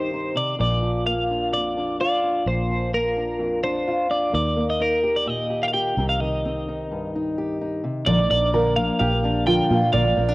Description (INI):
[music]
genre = indie folk with a building arrangement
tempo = 128 BPM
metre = 4/4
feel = straight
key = Bb major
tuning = A4 = 441 Hz
[part]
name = twelve-string electric guitar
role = melody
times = 0.0-10.3 s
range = Bb4 to G5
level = -24 LUFS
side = equal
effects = harmonic tremolo
[part]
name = fingerpicked old ladder-braced acoustic guitar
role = accompaniment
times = 0.0-10.3 s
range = F2 to G4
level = -25 LUFS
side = left 1 dB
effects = none
[part]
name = fingered electric bass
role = bass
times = 0.0-10.3 s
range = Bb1 to Bb2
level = -25 LUFS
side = equal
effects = none
[part]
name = picked steel-string acoustic guitar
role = accompaniment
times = 8.1-10.3 s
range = Bb2 to Bb4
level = -25 LUFS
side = left 2 dB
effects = none
[part]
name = tenor ukulele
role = arpeggios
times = 8.1-10.3 s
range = F4 to D5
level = -23 LUFS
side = right 3 dB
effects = analog delay
[sound]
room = light reverb, studio ambience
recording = home recording on cassette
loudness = -20 LUFS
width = side -20 dB against mid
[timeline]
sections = 0.0-8.1 A section; 8.1-10.3 B section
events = none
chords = 0.0 Cm; 0.6 Bb; 4.3 Eb; 6.0 Cm; 8.1 Bb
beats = 0.13 | 0.59 1.06 1.53 2.00 | 2.47 2.93 3.40 3.87 | 4.34 4.80 5.27 5.74 | 6.21 6.67 7.14 7.61 | 8.07 8.54 9.01 9.47 | 9.94